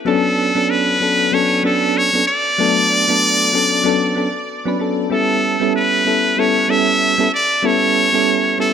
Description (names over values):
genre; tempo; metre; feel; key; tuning
chillout; 95 BPM; 4/4; swing 58% on 16ths; B minor; A4 = 437 Hz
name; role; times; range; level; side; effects
trumpet with straight mute; melody; 0.1-8.7 s; A4 to E5; -16 LUFS; equal; tape echo
soft electric-piano-like synth keys; accompaniment; 0.1-8.7 s; F#3 to B4; -17 LUFS; moving between left 6 dB and right 6 dB; chorus, tremolo, auto-pan, ping-pong delay
room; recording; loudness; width
light reverb, small room ambience; none; -13 LUFS; side -8 dB against mid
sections
0.0-8.7 A section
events
none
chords
0.1 Bm9; 5.1 A9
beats
| 0.06 0.69 1.33 1.96 | 2.59 3.22 3.85 4.48 | 5.12 5.75 6.38 7.01 | 7.64 8.27